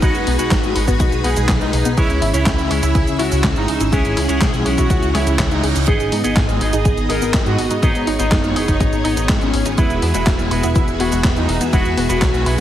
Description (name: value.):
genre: italo disco.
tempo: 123 BPM.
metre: 4/4.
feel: straight.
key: G# minor.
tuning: A4 = 440 Hz.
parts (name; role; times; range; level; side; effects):
analog synth brass; melody; 0.0-12.5 s; C#4 to A#4; -23 LUFS; equal; chorus, digital delay.
string machine, full ensemble; sustained chords; 0.0-12.6 s; B3 to G#5; -23 LUFS; equal; ensemble chorus.
analog pluck; arpeggios; 0.0-12.6 s; F#3 to E5; -27 LUFS; left 2 dB; chorus, phaser, digital delay.
electric guitar with an envelope filter; stabs; 0.0-12.6 s; G#3 to D#5; -25 LUFS; right 2 dB; none.
chorused synth bass; bass; 0.0-12.6 s; E1 to G#2; -20 LUFS; equal; none.
electronic kick drum; drums; 0.0-12.3 s; none; -18 LUFS; equal; none.
gated 80s digital drum machine; drums; 0.0-12.6 s; cabasa, handclaps, hi-hat, snare drum; -23 LUFS; equal; gated reverb, gated reverb snare, overdrive.
reverse cymbal; sound effects; 5.2-5.9 s; none; -30 LUFS; right 6 dB; none.
room: light reverb, digital ambience.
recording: heavily compressed radio sound, multiband compression.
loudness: -14 LUFS.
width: side -11 dB against mid.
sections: 0.0-12.6 A section.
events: reverse cymbal 5.2-5.9.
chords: 0.0 B6; 2.0 C#m; 5.9 G#m; 9.8 Eadd9.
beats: | 0.02 0.51 1.00 1.49 | 1.97 2.46 2.95 3.44 | 3.93 4.41 4.90 5.39 | 5.88 6.37 6.85 7.34 | 7.83 8.32 8.80 9.29 | 9.78 10.27 10.76 11.24 | 11.73 12.22.